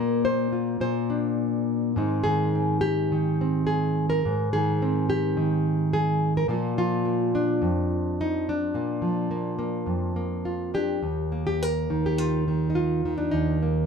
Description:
folk, solo fingerstyle acoustic guitar; 106 BPM; 4/4; straight; Eb major; A4 = 444 Hz
nylon-string guitar; solo; 0.0-13.9 s; Eb2 to C5; -23 LUFS; equal
light reverb; close, detailed microphones; -23 LUFS; side -6 dB against mid
0.0-11.0 A section; 11.0-13.9 B section
0.0 Bb; 2.0 Ab; 6.5 Bb; 11.0 Ebadd9

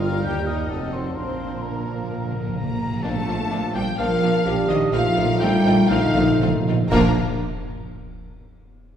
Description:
classical, dramatic, fast romantic movement for symphony orchestra; 115-135 BPM; 4/4; straight; Bb major; A4 = 442 Hz
warm symphonic violin section; melody; 0.0-7.2 s; Bb4 to Bb5; -31 LUFS; left 2 dB
clear oboe; second line; 0.0-7.1 s; A4 to Bb5; -32 LUFS; right 1 dB
dark clarinet; second line; 0.0-7.1 s; C4 to F4; -30 LUFS; right 1 dB
mellow silver concert flute; second line; 0.0-7.2 s; Eb5 to G6; -33 LUFS; left 1 dB
rich symphonic violin section; second line; 0.0-7.2 s; D4 to Bb4; -34 LUFS; left 2 dB
bright symphonic viola section; accompaniment; 0.0-7.2 s; A3 to G4; -33 LUFS; equal
warm bassoon; accompaniment; 0.0-7.1 s; F3 to Bb3; -32 LUFS; left 1 dB
mellow French horn section; sustained chords; 0.0-7.1 s; F3 to Bb4; -26 LUFS; left 1 dB
clear symphonic double bass section; bass; 0.0-7.2 s; F1 to Eb2; -28 LUFS; right 2 dB
clear tuba; bass; 0.0-7.1 s; F1 to Eb2; -31 LUFS; right 2 dB
rich symphonic cello section; bass; 0.0-7.2 s; Eb2 to Bb3; -25 LUFS; right 1 dB
timpani; percussion; 1.2-7.2 s; Bb2; -28 LUFS; equal
tam-tam, clash cymbals and concert bass drum; percussion; 3.0-7.8 s; -34 LUFS; left 1 dB
wet concert hall reverb, RT60 1.9 s; heard from further back in the room; -19 LUFS; side -9 dB against mid
0.0-3.0 A section; 3.0-6.9 B section; 6.9-8.9 C section
timpani fill 1.2-3.0, 4.9-6.9; slowing down 2.1-6.9; band accent 3.0-3.5, 6.9-7.4
0.3 Eb; 0.7 F7b9; 1.2 Bb; 4.9 F7/Bb; 6.9 Bb

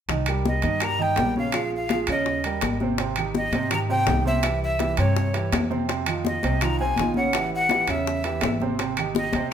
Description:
latin, salsa; 166 BPM; 4/4; straight; A4 = 440 Hz
warm grand piano; accompaniment; 0.1-9.5 s; C3 to Eb5; -27 LUFS; right 7 dB
upright bass; bass; 0.1-9.5 s; Ab1 to Ab2; -28 LUFS; left 1 dB
bongos; percussion; 0.1-9.3 s; -32 LUFS; left 9 dB
congas; percussion; 0.1-9.5 s; -29 LUFS; left 3 dB
timbales; percussion; 0.1-9.5 s; -32 LUFS; right 4 dB
claves; percussion; 0.3-9.2 s; -36 LUFS; left 2 dB
breathy bright jazz flute; melody; 0.5-9.5 s; Db5 to Bb5; -26 LUFS; left 1 dB
moderate large studio reverb, RT60 1.2 s; minimal, uncompressed stereo recording; -21 LUFS; side -8 dB against mid
0.1-9.5 A section
0.1 Cm7; 1.5 Bbm7; 2.3 Eb6; 3.0 Abmaj7; 4.4 C; 5.9 Fm7; 7.3 A6; 8.8 Abmaj7

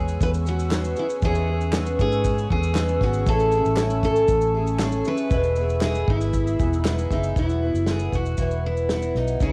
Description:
acoustic pop; 117 BPM; 4/4; straight; E major; A4 = 440 Hz
picked steel-string acoustic guitar; melody; 0.0-9.5 s; D#4 to B4; -28 LUFS; equal; cassette tape
picked twelve-string acoustic guitar; accompaniment; 0.0-9.5 s; C#3 to G#4; -30 LUFS; equal; double-tracked, cassette tape
glassy FM pad; sustained chords; 0.0-7.3 s; G#4 to E6; -38 LUFS; equal; ensemble chorus, built-in reverb, cassette tape, plate reverb
vintage muted fingered electric bass; bass; 0.0-9.5 s; E1 to G#2; -27 LUFS; equal; tube saturation
natural country drum kit; drums; 0.1-9.5 s; kick drum, shaker, snare drum; -28 LUFS; equal; cassette tape
group handclap; percussion; 0.7-7.0 s; -37 LUFS; equal
moderate studio ambience, RT60 0.5 s; home recording on cassette; -22 LUFS; mono
0.0-7.4 A section; 7.4-9.5 B section
0.0 E6; 3.3 Amaj7; 5.3 E; 7.4 Esus2

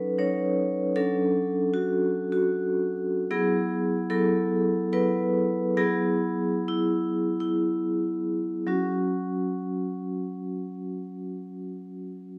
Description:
classical, contemporary piece for solo vibraphone; 57-78 BPM; 3/4; rubato; F# minor; A4 = 439 Hz
vibraphone with medium hard mallets; solo; 0.0-12.4 s; F#3 to C#5; -27 LUFS; equal
wet recital hall reverb, RT60 1.6 s; dark, warm production; -27 LUFS; mono
0.0-8.7 A section; 8.7-11.8 B section
slowing down 2.1-8.7
0.0 F#m6; 1.0 Dmaj7/F#; 3.3 F#9sus4; 8.7 F#5

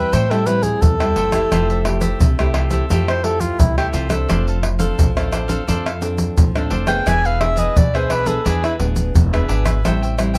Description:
samba and choro; 86 BPM; 4/4; straight; A minor; A4 = 440 Hz
warm soprano saxophone; melody; 0.0-8.7 s; E4 to G#5; -22 LUFS; equal
cavaquinho; accompaniment; 0.0-10.4 s; D4 to G5; -31 LUFS; equal
nylon-string guitar; accompaniment; 0.0-10.4 s; A2 to A4; -26 LUFS; equal
upright bass; bass; 0.0-10.4 s; D1 to A2; -23 LUFS; equal
tube shaker, surdo, pandeiro and tamborim; percussion; 0.1-10.4 s; -21 LUFS; equal
little or no reverb; close, detailed microphones; -18 LUFS; mono
0.0-10.4 A section
soprano saxophone solo 0.0-10.4
0.0 Am7; 1.5 Fmaj9; 4.3 Dm7/F; 7.1 E7; 9.9 Am7

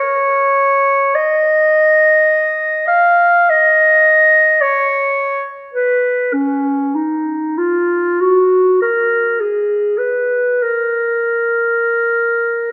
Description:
classical, free, expressive piece for unaccompanied clarinet; 38-55 BPM; 4/4; rubato; A4 = 440 Hz
warm clarinet; solo; 0.0-12.7 s; C#4 to E#5; -14 LUFS; equal
moderate concert hall reverb, RT60 1.9 s; -14 LUFS; mono
0.0-12.7 A section

